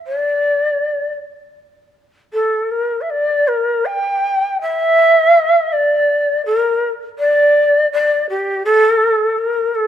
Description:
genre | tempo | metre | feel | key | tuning
japanese traditional, Japanese chamber music | 81 BPM | 4/4 | rubato | unclear | A4 = 440 Hz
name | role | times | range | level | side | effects
breathy shakuhachi | solo | 0.1-9.9 s | G4 to G5 | -13 LUFS | equal | none
room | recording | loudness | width
light reverb | close, detailed microphones | -13 LUFS | side -10 dB against mid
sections
0.0-9.9 A section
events
none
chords
none

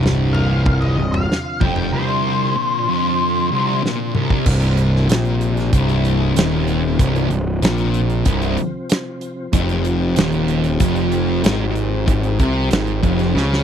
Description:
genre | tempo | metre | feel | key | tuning
stoner and doom metal | 95 BPM | 4/4 | straight | C phrygian from 4.5 s | A4 = 441 Hz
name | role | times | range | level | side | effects
tonewheel organ | sustained chords | 0.0-13.6 s | C3 to G4 | -29 LUFS | equal | none
thick fuzz guitar | riff | 0.0-13.6 s | C2 to Db3 | -21 LUFS | left 8 dB | distortion
thick fuzz guitar | riff | 0.0-13.6 s | C2 to Db3 | -22 LUFS | right 10 dB | distortion
fuzz picked electric bass | bass | 0.0-13.6 s | C1 to Db2 | -21 LUFS | equal | overdrive
big rock drum kit | drums | 0.0-13.6 s | crash cymbal, hi-hat, kick drum, snare drum, toms | -20 LUFS | equal | none
octave-fuzz lead guitar | melody | 0.3-3.8 s | C5 to G5 | -22 LUFS | left 2 dB | distortion, tape echo
room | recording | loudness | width
little or no reverb | dry, close 1970s-style studio recording | -15 LUFS | side -9 dB against mid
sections
0.0-4.5 A section; 4.5-13.6 B section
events
drum fill 3.8-4.5, 13.3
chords
0.0 N.C.; 4.5 Cm; 9.5 F5

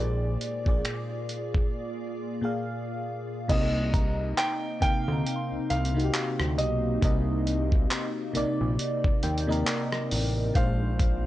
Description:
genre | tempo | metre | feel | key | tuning
contemporary R&B | 68 BPM | 4/4 | swing 58% on 16ths | C minor | A4 = 440 Hz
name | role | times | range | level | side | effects
dark baby grand piano | melody | 0.0-11.3 s | D5 to G5 | -33 LUFS | right 1 dB | tape echo
FM electric piano with soft pad layer | accompaniment | 0.0-11.3 s | Bb2 to G5 | -31 LUFS | left 1 dB | chorus
glassy FM pad | sustained chords | 0.0-11.3 s | Bb3 to D5 | -36 LUFS | equal | ensemble chorus, built-in reverb
fat analog bass | bass | 0.0-11.3 s | A1 to Eb2 | -28 LUFS | equal | none
dusty soul sampler-style drum kit | drums | 0.4-11.2 s | crash cymbal, finger snaps, handclaps, hi-hat, kick drum, rim click | -27 LUFS | equal | vintage 12-bit sampler grit
soft synth bell | texture | 3.9-11.3 s | F5 to G6 | -44 LUFS | right 2 dB | chorus, tape echo
room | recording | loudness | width
little or no reverb | dry, gritty hardware recording, cassette tape, nothing above 10.6 kHz | -25 LUFS | side -15 dB against mid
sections
0.0-3.5 A section; 3.5-11.3 B section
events
break 1.7-3.5; FM electric piano fill 8.8-10.6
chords
0.0 Bb7; 3.5 Cm9; 10.6 Bb9

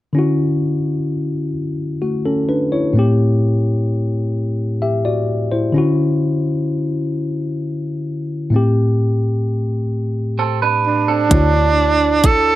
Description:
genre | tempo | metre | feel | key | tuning
slow six-eight R&B | 43 BPM (dotted quarters) | 6/8 | straight | D major | A4 = 444 Hz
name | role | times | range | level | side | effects
tine electric piano | accompaniment | 0.1-12.6 s | A2 to E5 | -17 LUFS | left 1 dB | none
clean electric guitar | second line | 10.4-11.5 s | C4 to B4 | -18 LUFS | right 7 dB | none
breathy tenor saxophone | melody | 10.9-12.6 s | D4 to A4 | -14 LUFS | right 4 dB | plate reverb
vintage muted fingered electric bass | bass | 11.3-12.6 s | D2 | -18 LUFS | equal | none
smooth R&B drum kit | drums | 11.3-12.5 s | hi-hat, kick drum | -14 LUFS | equal | none
room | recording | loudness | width
moderate studio ambience, RT60 0.5 s | none | -15 LUFS | side -15 dB against mid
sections
0.1-11.3 A section; 11.3-12.6 B section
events
none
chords
0.1 Dmaj9; 2.9 Am7; 5.7 Dmaj9; 8.5 Am7; 11.3 Dmaj9

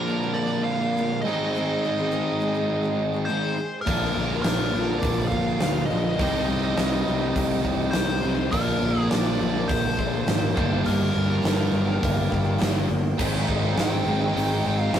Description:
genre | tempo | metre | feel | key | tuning
classic rock | 103 BPM | 4/4 | straight | unclear | A4 = 440 Hz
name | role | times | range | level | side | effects
nasal lead guitar with a parked wah | melody | 0.0-15.0 s | Bb4 to G5 | -29 LUFS | equal | overdrive
picked steel-string acoustic guitar | accompaniment | 0.0-15.0 s | G2 to Bb4 | -33 LUFS | left 2 dB | none
distorted electric guitar | riff | 0.0-15.0 s | G2 to Eb4 | -29 LUFS | right 5 dB | overdrive
sludgy distorted guitar | riff | 0.0-15.0 s | G2 to Eb4 | -28 LUFS | left 3 dB | overdrive
fuzz fingered electric bass | bass | 3.9-15.0 s | G1 to D2 | -27 LUFS | equal | overdrive
huge arena drum kit | drums | 3.9-15.0 s | crash cymbal, hi-hat, kick drum, snare drum | -27 LUFS | equal | none
room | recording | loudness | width
moderate stone room reverb, RT60 1.3 s | rough rehearsal-room recording | -21 LUFS | side -9 dB against mid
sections
0.0-13.2 A section; 13.2-15.0 B section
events
lead electric guitar solo 13.2-15.0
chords
0.0 Bb; 1.2 Ab; 3.9 Bb; 6.2 Cm; 8.5 Bb; 10.6 Gm; 13.2 Ab

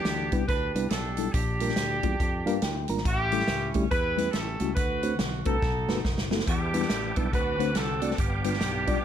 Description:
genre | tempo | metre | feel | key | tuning
uptempo gospel | 140 BPM | 4/4 | swing 62% on 8ths | unclear | A4 = 442 Hz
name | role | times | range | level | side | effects
warm horn section | melody | 0.0-9.0 s | B3 to B4 | -30 LUFS | right 1 dB | none
mellow tine electric piano | accompaniment | 0.0-9.0 s | G2 to Bb5 | -30 LUFS | left 2 dB | medium stereo tremolo
fingered electric bass | bass | 0.1-9.0 s | F#1 to G2 | -33 LUFS | equal | none
natural country drum kit | drums | 0.1-9.0 s | hi-hat, kick drum, snare drum | -30 LUFS | equal | none
tonewheel organ | sustained chords | 6.5-9.0 s | B3 to D6 | -36 LUFS | right 4 dB | fast rotary speaker, chorus vibrato
room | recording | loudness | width
studio ambience | none | -24 LUFS | side -9 dB against mid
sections
0.0-9.0 A section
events
tine electric piano fill 2.2-3.1; drum fill 5.6-6.5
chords
0.0 Em7; 1.3 Bb6; 3.1 A7; 4.8 D7; 5.6 B7; 6.5 Em7; 7.3 D7; 8.2 G7

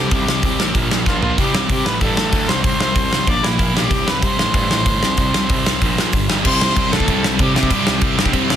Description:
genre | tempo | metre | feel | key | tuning
punk rock | 189 BPM | 4/4 | straight | C major | A4 = 442 Hz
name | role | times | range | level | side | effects
clear viola | melody | 0.0-8.2 s | E4 to D5 | -22 LUFS | left 1 dB | none
sludgy distorted guitar | riff | 0.0-8.6 s | G2 to C4 | -20 LUFS | right 1 dB | overdrive
fuzz picked electric bass | bass | 0.0-8.6 s | G1 to C3 | -24 LUFS | equal | overdrive
big rock drum kit | drums | 0.1-8.6 s | crash cymbal, hi-hat, kick drum, snare drum, toms | -18 LUFS | equal | none
crunchy overdriven guitar | riff | 6.4-8.6 s | C3 to C4 | -22 LUFS | right 1 dB | none
room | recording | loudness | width
little or no reverb | dense, heavily limited modern master | -14 LUFS | side -10 dB against mid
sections
0.0-6.4 A section; 6.4-8.6 B section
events
drum fill 1.1-1.4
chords
0.0 C5; 0.7 Bb5; 1.4 C5; 1.9 A5; 2.5 C5; 3.3 Bb5; 3.9 C5; 4.4 Am; 5.0 C5; 5.8 Bb5; 6.1 G5; 6.4 C5

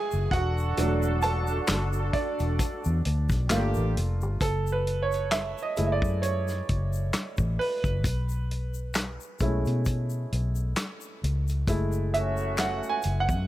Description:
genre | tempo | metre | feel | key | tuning
R&B, neo-soul | 66 BPM | 4/4 | swing 56% on 16ths | F# minor | A4 = 440 Hz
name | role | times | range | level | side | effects
clear concert grand piano | accompaniment | 0.0-13.5 s | F#3 to A5 | -30 LUFS | right 3 dB | none
vintage muted fingered electric bass | bass | 0.1-13.5 s | E1 to B2 | -27 LUFS | left 1 dB | none
egg shaker and finger snaps | percussion | 0.1-13.5 s | none | -42 LUFS | left 7 dB | none
clear horn section | stabs | 0.3-3.9, 12.1-13.0 s | A3 to A4 | -33 LUFS | equal | none
warm soul drum kit | drums | 0.3-13.5 s | handclaps, hi-hat, kick drum, snare drum | -30 LUFS | left 1 dB | none
room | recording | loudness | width
little or no reverb | none | -25 LUFS | side -14 dB against mid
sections
0.0-4.4 A section; 4.4-13.5 B section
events
grand piano solo 0.0-4.4, 4.4-13.5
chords
0.3 E9sus4; 3.5 Gm7; 4.4 F#m9; 8.0 B13sus4; 11.7 F#m9

